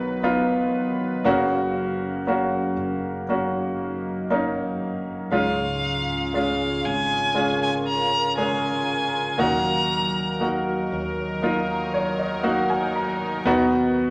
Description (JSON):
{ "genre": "pop ballad", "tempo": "59 BPM", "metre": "4/4", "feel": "straight", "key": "F# major", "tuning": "A4 = 444 Hz", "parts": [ { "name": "clear grand piano", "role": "accompaniment", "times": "0.0-14.1 s", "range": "G#2 to A#5", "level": "-26 LUFS", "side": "equal", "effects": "none" }, { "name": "sweeping resonant pad", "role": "sustained chords", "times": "0.0-14.1 s", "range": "C#3 to B4", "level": "-32 LUFS", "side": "equal", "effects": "chorus" }, { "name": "fingered electric bass", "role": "bass", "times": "0.0-14.1 s", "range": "F#1 to D#2", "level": "-39 LUFS", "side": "equal", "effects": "none" }, { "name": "rich violin", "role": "melody", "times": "5.3-10.4 s", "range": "E#5 to A#5", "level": "-27 LUFS", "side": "equal", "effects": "none" } ], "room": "wet large studio reverb, RT60 1.3 s", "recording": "none", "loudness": "-24 LUFS", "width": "mono", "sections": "0.0-14.1 A section", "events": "grand piano fill 11.4-13.5", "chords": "0.0 B; 1.3 F#; 5.3 C#; 9.4 D#m; 13.5 B", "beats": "0.24 | 1.25 2.27 3.29 4.30 | 5.32 6.34 7.35 8.37 | 9.39 10.40 11.42 12.44 | 13.46" }